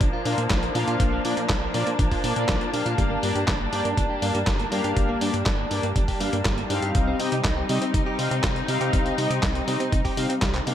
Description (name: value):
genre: italo disco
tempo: 121 BPM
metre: 4/4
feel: straight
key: G minor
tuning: A4 = 440 Hz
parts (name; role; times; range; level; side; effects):
- muted studio string section; sustained chords; 0.0-10.7 s; F3 to Eb4; -28 LUFS; left 1 dB; none
- direct-recorded clean electric guitar; arpeggios; 0.0-10.7 s; F3 to G4; -32 LUFS; right 5 dB; tape echo
- chorused synth bass; bass; 0.0-10.7 s; G1 to C3; -29 LUFS; equal; tube saturation, tape echo
- dusty soul sampler-style drum kit; drums; 0.0-10.7 s; handclaps, hi-hat, snare drum; -29 LUFS; equal; overdrive, gated reverb
- electronic kick drum; drums; 0.0-10.5 s; none; -25 LUFS; equal; overdrive
- analog synth brass; stabs; 0.3-10.7 s; Bb3 to F5; -29 LUFS; left 3 dB; chorus, cassette tape, tape echo
room: light reverb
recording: none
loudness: -21 LUFS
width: side -10 dB against mid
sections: 0.0-10.7 A section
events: drum fill 10.5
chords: 0.0 Bb; 3.0 Gm; 6.9 Cm